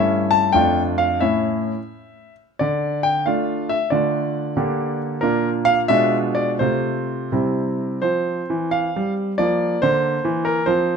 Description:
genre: classical-period piano sonatina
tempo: 82-94 BPM (dotted quarters)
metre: 6/8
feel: rubato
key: D minor, F major from 5.2 s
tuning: A4 = 440 Hz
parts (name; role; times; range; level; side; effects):
- clear concert grand piano; solo; 0.0-11.0 s; F2 to A5; -18 LUFS; equal; none
room: light reverb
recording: close, detailed microphones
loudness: -18 LUFS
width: side -6 dB against mid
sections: 0.0-8.0 A section; 8.0-11.0 B section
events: none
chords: 0.0 A7/G; 0.6 Dm/F; 1.2 A; 2.6 Dm; 4.6 Gm/D; 5.2 Bb; 5.9 Bdim7; 6.6 F/C; 7.3 C; 8.0 F5; 9.4 Bb

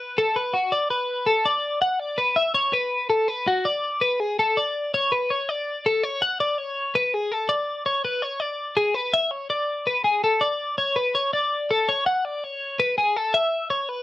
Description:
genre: rock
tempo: 164 BPM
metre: 4/4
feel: straight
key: A major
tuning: A4 = 440 Hz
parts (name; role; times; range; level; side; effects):
- twelve-string electric guitar; solo; 0.0-14.0 s; F#4 to F#5; -21 LUFS; left 1 dB; none
room: moderate small room reverb, RT60 0.6 s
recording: none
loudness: -21 LUFS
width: side -15 dB against mid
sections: 0.0-3.7 A section; 3.7-14.0 B section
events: none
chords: none

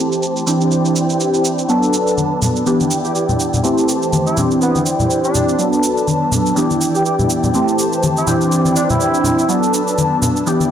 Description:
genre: filtered disco house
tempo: 123 BPM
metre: 4/4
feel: swing 57% on 16ths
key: unclear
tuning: A4 = 439 Hz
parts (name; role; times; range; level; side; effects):
- funky polysynth comp; accompaniment; 0.0-10.7 s; E3 to A4; -16 LUFS; equal; chorus, phaser, low-pass filter
- rich studio string section; sustained chords; 0.0-10.7 s; D4 to A5; -21 LUFS; left 1 dB; low-pass filter
- shaker; drums; 0.1-10.7 s; none; -24 LUFS; right 3 dB; low-pass filter on perc
- tube shaker and congas; percussion; 1.7-10.7 s; none; -20 LUFS; left 2 dB; low-pass filter on perc
- bright horn section; melody; 3.0-9.6 s; B3 to G4; -23 LUFS; right 1 dB; vintage 12-bit sampler grit, low-pass filter, digital delay
room: moderate echo chamber reverb, RT60 1.5 s, small room ambience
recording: none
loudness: -13 LUFS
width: side -9 dB against mid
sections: 0.0-10.7 A section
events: filter sweep 0.0-10.7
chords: 0.5 D9sus4; 1.7 Bm7; 2.7 Em7; 3.6 Am7; 4.4 D9sus4; 5.6 Bm7; 6.6 Em7; 7.5 Am7; 8.3 D9sus4; 9.5 Bm7

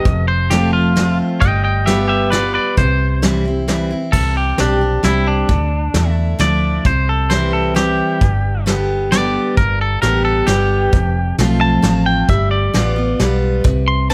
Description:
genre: honky-tonk and classic country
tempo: 132 BPM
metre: 3/4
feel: straight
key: C major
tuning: A4 = 442 Hz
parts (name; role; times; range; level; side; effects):
- twangy electric guitar; melody; 0.0-14.1 s; D4 to C6; -21 LUFS; equal; tape echo
- picked steel-string acoustic guitar; accompaniment; 0.0-14.1 s; F2 to G4; -21 LUFS; equal; none
- vintage muted fingered electric bass; bass; 0.1-14.1 s; F1 to E2; -21 LUFS; equal; none
- soft brush drum kit; drums; 0.1-14.1 s; crash cymbal, hi-hat, kick drum, snare drum; -20 LUFS; equal; none
room: light reverb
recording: none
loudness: -16 LUFS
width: mono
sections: 0.0-4.1 A section; 4.1-14.1 A section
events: clean electric guitar solo 0.0-4.1, 4.1-14.1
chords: 0.1 F; 1.4 G7; 2.8 C; 4.1 Csus2; 5.5 Dmadd9; 6.9 C; 8.2 G; 10.9 F; 12.3 G7

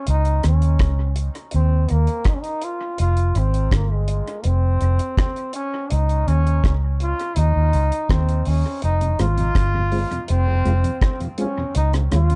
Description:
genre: roots reggae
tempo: 82 BPM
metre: 4/4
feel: straight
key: F minor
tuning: A4 = 438 Hz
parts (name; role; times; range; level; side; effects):
- bright trombone; melody; 0.0-12.4 s; Ab3 to F4; -28 LUFS; equal; dub echo
- vintage muted fingered electric bass; bass; 0.1-12.4 s; F1 to Eb2; -20 LUFS; equal; none
- deep reggae drum kit; drums; 0.1-12.4 s; hi-hat, kick drum, rim click; -25 LUFS; equal; dub echo
- mellow tonewheel organ; accompaniment; 9.0-12.4 s; F2 to F4; -30 LUFS; equal; chorus vibrato, slow rotary speaker, dub echo
room: light reverb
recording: dark, warm production, nothing above 10.6 kHz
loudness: -20 LUFS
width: mono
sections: 0.0-12.4 A section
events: none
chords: 0.1 Dbsus2; 1.5 Dbmaj13/Eb (rootless); 3.0 Fm; 5.9 Dbsus2; 8.8 Fm; 11.7 Db

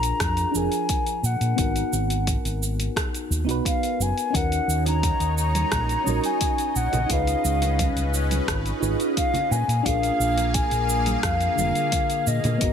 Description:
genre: sunset chillout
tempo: 87 BPM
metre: 4/4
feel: straight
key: unclear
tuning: A4 = 439 Hz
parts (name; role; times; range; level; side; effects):
- baroque flute; melody; 0.0-12.7 s; Eb5 to Bb5; -26 LUFS; left 3 dB; digital delay
- mellow FM electric piano; accompaniment; 0.0-12.7 s; D3 to Cb5; -28 LUFS; moving between left 7 dB and right 7 dB; chorus, phaser, auto-pan, vintage 12-bit sampler grit, tape echo
- fingered electric bass; bass; 0.0-12.7 s; F1 to Bb2; -25 LUFS; equal; none
- deep house drum kit; drums; 0.0-12.7 s; cabasa, hi-hat, rim click; -30 LUFS; right 1 dB; none
- electronic kick drum; drums; 0.2-12.7 s; none; -28 LUFS; equal; none
- lush unison pad; sustained chords; 4.3-12.7 s; Ab3 to F5; -31 LUFS; equal; chorus, phaser
- bongos and congas; percussion; 4.9-12.6 s; none; -34 LUFS; right 5 dB; none
room: light reverb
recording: none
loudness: -21 LUFS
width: side -8 dB against mid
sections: 0.0-12.7 A section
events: none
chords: 0.0 Bb7; 1.6 Abm7; 4.3 Ebm7; 7.1 Db7; 9.5 Bb7

